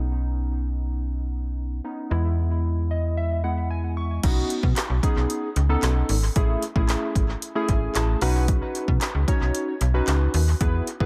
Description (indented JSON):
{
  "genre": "dance-pop",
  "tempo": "113 BPM",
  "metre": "4/4",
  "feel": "straight",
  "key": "B mixolydian",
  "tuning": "A4 = 443 Hz",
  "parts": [
    { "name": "warm analog keys", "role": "accompaniment", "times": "0.0-11.1 s", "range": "G#3 to C#6", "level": "-30 LUFS", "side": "equal", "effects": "chorus, sidechain pumping, low-pass filter, tape echo" },
    { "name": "slap-like FM bass", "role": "bass", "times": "0.0-11.1 s", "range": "G#1 to B2", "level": "-25 LUFS", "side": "equal", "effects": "sidechain pumping" },
    { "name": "deep house drum kit", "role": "drums", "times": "4.2-11.1 s", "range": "crash cymbal, handclaps, hi-hat, kick drum, snare drum", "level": "-27 LUFS", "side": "equal", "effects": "tape echo" }
  ],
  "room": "light reverb",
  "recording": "echo-heavy mix",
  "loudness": "-24 LUFS",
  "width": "mono",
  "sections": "0.0-4.2 A section; 4.2-11.1 B section",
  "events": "filter sweep on synth keys 0.0-4.2; synth keys fill 2.6-4.2, 7.4-8.5; drop 4.2-11.1",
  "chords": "0.0 Badd9; 2.1 E; 4.2 Badd9; 6.4 Amaj7; 8.2 Badd9"
}